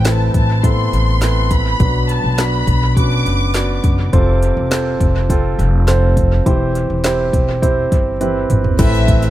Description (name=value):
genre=piano-driven pop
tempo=103 BPM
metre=4/4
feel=straight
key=A minor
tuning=A4 = 440 Hz
part: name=warm studio violin section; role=melody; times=0.0-3.8, 8.8-9.3 s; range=E5 to D6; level=-22 LUFS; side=left 1 dB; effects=dub echo
part: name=warm concert grand piano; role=accompaniment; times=0.0-9.3 s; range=A2 to D5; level=-18 LUFS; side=right 2 dB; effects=none
part: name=upright bass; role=bass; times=0.0-9.3 s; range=E1 to B1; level=-16 LUFS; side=equal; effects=none
part: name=deep house drum kit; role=drums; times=0.0-9.3 s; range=crash cymbal, handclaps, hi-hat, kick drum, snare drum, toms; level=-17 LUFS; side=equal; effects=none
part: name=egg shaker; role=percussion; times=8.8-9.3 s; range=none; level=-36 LUFS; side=left 6 dB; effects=none
room=little or no reverb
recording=echo-heavy mix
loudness=-13 LUFS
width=side -14 dB against mid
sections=0.0-8.8 A section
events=drum fill 8.2-8.8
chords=0.0 Amadd9; 1.8 Bm; 4.1 F; 6.5 C/E; 8.8 Amadd9